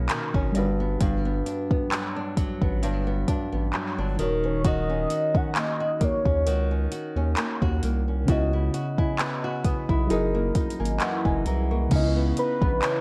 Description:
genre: contemporary R&B.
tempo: 66 BPM.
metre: 4/4.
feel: swing 54% on 16ths.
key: unclear.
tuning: A4 = 440 Hz.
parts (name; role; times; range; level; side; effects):
mellow FM electric piano; accompaniment; 0.0-13.0 s; A#2 to D#6; -32 LUFS; equal; chorus, phaser.
flamenco guitar; arpeggios; 0.0-13.0 s; F#2 to F#4; -32 LUFS; equal; digital delay.
saturated sub bass; bass; 0.0-12.8 s; D#1 to D#2; -29 LUFS; equal; none.
smooth R&B drum kit; drums; 0.1-13.0 s; crash cymbal, handclaps, hi-hat, kick drum; -28 LUFS; equal; none.
warm velvety synth lead; melody; 4.2-6.9, 12.4-13.0 s; A#4 to F#5; -29 LUFS; equal; chorus.
soft round pluck; texture; 12.8-13.0 s; C#5; -38 LUFS; equal; none.
room: little or no reverb.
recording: worn, warbling old tape, cassette tape, warbly pitch drift.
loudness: -25 LUFS.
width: mono.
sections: 0.0-11.9 A section; 11.9-13.0 B section.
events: none.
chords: 0.0 Bmaj9; 0.6 Gmaj7; 4.2 D#m7; 8.3 C#m11; 10.1 F#13; 11.9 C#m9.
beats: 0.10 | 1.01 1.92 2.83 3.74 | 4.64 5.55 6.46 7.37 | 8.28 9.19 10.10 11.01 | 11.92 12.83.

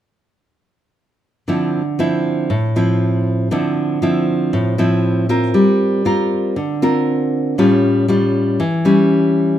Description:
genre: bossa nova.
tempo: 118 BPM.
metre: 4/4.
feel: straight.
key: D minor.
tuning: A4 = 441 Hz.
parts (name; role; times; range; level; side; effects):
nylon-string guitar; accompaniment; 1.5-9.6 s; A2 to Bb4; -14 LUFS; equal; none.
room: moderate large studio reverb, RT60 1.2 s.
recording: minimal, uncompressed stereo recording.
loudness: -14 LUFS.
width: side -11 dB against mid.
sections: 1.5-9.6 A section.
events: none.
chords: 1.5 Dm9; 5.5 Gm7; 7.6 A7b13.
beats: | 1.48 1.99 2.50 3.00 | 3.51 4.02 4.53 5.04 | 5.55 6.05 6.56 7.07 | 7.58 8.09 8.60 9.10.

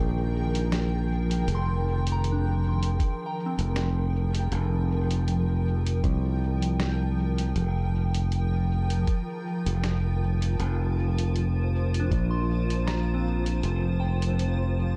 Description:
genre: ambient dub.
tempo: 79 BPM.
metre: 4/4.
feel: swing 55% on 16ths.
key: F dorian.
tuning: A4 = 440 Hz.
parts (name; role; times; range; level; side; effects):
granular cloud pad; sustained chords; 0.0-15.0 s; Eb3 to G5; -34 LUFS; equal; built-in reverb.
soft synth bell; arpeggios; 0.0-15.0 s; C4 to C6; -39 LUFS; equal; chorus, tape echo.
modern bright fingered electric bass; bass; 0.0-15.0 s; F1 to C2; -27 LUFS; equal; none.
lo-fi sampler-style drum kit; drums; 0.6-14.6 s; hi-hat, snare drum; -38 LUFS; equal; dub echo.
electronic kick drum; drums; 3.0-12.3 s; none; -28 LUFS; equal; none.
room: little or no reverb.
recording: dark, warm production.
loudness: -26 LUFS.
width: mono.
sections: 0.0-15.0 A section.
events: none.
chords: 0.0 Fm11.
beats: 0.72 | 1.48 2.24 3.00 3.76 | 4.52 5.28 6.04 6.80 | 7.56 8.32 9.08 9.84 | 10.60 11.36 12.12 12.87 | 13.63 14.39.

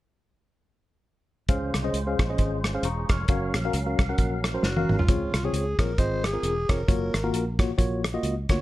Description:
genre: uptempo gospel.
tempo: 134 BPM.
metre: 4/4.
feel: swing 58% on 8ths.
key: Db major.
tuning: A4 = 439 Hz.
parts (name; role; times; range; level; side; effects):
mellow tine electric piano; accompaniment; 1.5-8.6 s; Db3 to F6; -29 LUFS; left 2 dB; medium stereo tremolo.
tonewheel organ; sustained chords; 1.5-5.0 s; Gb3 to F5; -35 LUFS; right 2 dB; slow rotary speaker, overdrive, chorus vibrato.
fingered electric bass; bass; 1.5-8.6 s; Fb1 to D2; -29 LUFS; equal; none.
warm soul drum kit; drums; 1.5-8.6 s; hi-hat, kick drum, rim click, snare drum, toms; -25 LUFS; equal; none.
growling alto saxophone; melody; 4.6-7.6 s; F4 to C5; -30 LUFS; equal; none.
room: light reverb, small room ambience.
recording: dark, warm production.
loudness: -23 LUFS.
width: side -16 dB against mid.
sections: 1.5-5.1 A section; 5.1-8.6 B section.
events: drum fill 4.6-5.1.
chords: 1.5 Dbmaj7; 3.3 Gbmaj7; 5.1 Dbmaj7; 6.9 Gbmaj7.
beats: | 1.49 1.94 2.38 2.83 | 3.28 3.73 4.18 4.63 | 5.08 5.53 5.98 6.43 | 6.88 7.33 7.78 8.23.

